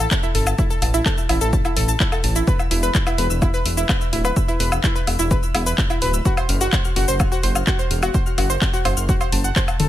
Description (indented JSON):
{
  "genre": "melodic techno",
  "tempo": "127 BPM",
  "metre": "4/4",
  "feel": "straight",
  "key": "unclear",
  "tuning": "A4 = 445 Hz",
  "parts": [
    { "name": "analog pluck", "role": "arpeggios", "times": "0.0-9.9 s", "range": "E4 to F6", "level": "-23 LUFS", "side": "right 1 dB", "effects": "chorus, sidechain pumping, dub echo" },
    { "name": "dark detuned saw bass", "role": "bass", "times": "0.0-9.9 s", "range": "D1 to A1", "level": "-22 LUFS", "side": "equal", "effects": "sidechain pumping" },
    { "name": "house drum kit", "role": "drums", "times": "0.0-9.9 s", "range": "handclaps, hi-hat, shaker, toms, woodblock", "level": "-24 LUFS", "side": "left 2 dB", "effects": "none" },
    { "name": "electronic kick drum", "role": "drums", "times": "0.1-9.7 s", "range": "none", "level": "-21 LUFS", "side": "equal", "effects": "none" }
  ],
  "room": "little or no reverb",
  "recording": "none",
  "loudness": "-17 LUFS",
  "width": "side -13 dB against mid",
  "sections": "0.0-9.9 A section",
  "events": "none",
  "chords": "0.0 A5; 2.5 E5; 6.3 F#(b5, no3)"
}